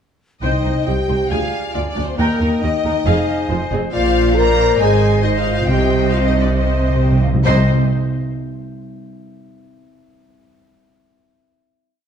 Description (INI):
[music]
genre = cinematic, heroic adventure film score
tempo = 137 BPM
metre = 4/4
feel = straight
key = C minor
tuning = A4 = 440 Hz
[part]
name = clear symphonic violin section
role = melody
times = 0.4-7.7 s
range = Bb4 to Bb5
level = -26 LUFS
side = left 4 dB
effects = none
[part]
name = clear clarinet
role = second line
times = 0.4-7.6 s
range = C5 to Eb5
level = -28 LUFS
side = left 2 dB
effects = none
[part]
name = clear symphonic violin section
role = second line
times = 0.4-7.7 s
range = Bb4 to Bb5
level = -28 LUFS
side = equal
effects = none
[part]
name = concert flute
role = second line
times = 0.4-7.7 s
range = D5 to Ab5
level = -28 LUFS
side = equal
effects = none
[part]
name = clear studio viola section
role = accompaniment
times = 0.4-7.7 s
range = C4 to Ab5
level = -25 LUFS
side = equal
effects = none
[part]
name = mellow French horn section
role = sustained chords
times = 0.4-7.7 s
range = Bb3 to Bb4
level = -20 LUFS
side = left 3 dB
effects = none
[part]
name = clear symphonic cello section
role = bass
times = 0.4-7.7 s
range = C2 to C3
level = -21 LUFS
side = right 2 dB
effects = none
[part]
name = clear symphonic double bass section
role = bass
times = 0.4-7.7 s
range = F1 to Eb2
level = -21 LUFS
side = right 2 dB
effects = none
[part]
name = timpani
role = percussion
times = 0.4-1.1, 5.7-7.7 s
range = C3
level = -21 LUFS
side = equal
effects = none
[sound]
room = wet scoring stage reverb, RT60 1.6 s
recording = dark, warm production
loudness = -14 LUFS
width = side -8 dB against mid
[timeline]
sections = 0.4-7.5 theme; 7.5-9.2 final chord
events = timpani fill 6.6-7.5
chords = 0.4 Cm; 1.3 Ddim; 2.2 Eb; 3.1 Fm; 3.9 Bbadd9; 4.8 Ab; 5.7 Cm